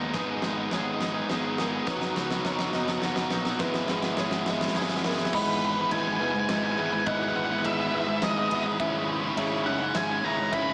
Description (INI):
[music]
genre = post-rock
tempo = 104 BPM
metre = 3/4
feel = straight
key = unclear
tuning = A4 = 441 Hz
[part]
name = rich chamber string section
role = sustained chords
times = 0.0-10.7 s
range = B3 to D#6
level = -42 LUFS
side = equal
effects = none
[part]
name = felt-muted upright piano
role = arpeggios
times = 0.0-10.7 s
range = A#4 to E5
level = -40 LUFS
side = equal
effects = tape echo
[part]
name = twangy electric guitar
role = arpeggios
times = 0.0-10.7 s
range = G#2 to A#4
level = -38 LUFS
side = equal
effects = subtle chorus, tape echo
[part]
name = sludgy distorted guitar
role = riff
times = 0.0-10.7 s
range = G#2 to G#4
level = -36 LUFS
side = equal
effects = overdrive
[part]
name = thick fuzz guitar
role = riff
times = 0.0-10.7 s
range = G#2 to G#4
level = -32 LUFS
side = equal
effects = distortion
[part]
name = picked electric bass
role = bass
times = 0.0-10.7 s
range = F#1 to D#2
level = -41 LUFS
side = equal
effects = none
[part]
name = huge arena drum kit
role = drums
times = 0.1-10.7 s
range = crash cymbal, kick drum, ride cymbal, snare drum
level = -36 LUFS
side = equal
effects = none
[part]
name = octave-fuzz lead guitar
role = melody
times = 5.3-10.7 s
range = B4 to B5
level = -31 LUFS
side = equal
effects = distortion, tape echo
[sound]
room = moderate plate reverb, RT60 1.8 s, small room ambience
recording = dreamy mix soaked in reverb, small speaker sound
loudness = -27 LUFS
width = mono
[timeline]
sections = 0.0-5.3 A section; 5.3-10.7 B section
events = build-up 0.0-5.3; drum fill 0.0-5.3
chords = 0.0 G#m; 1.9 Bmaj7/F#; 3.6 E/G#; 5.3 Emaj7; 8.8 C#m7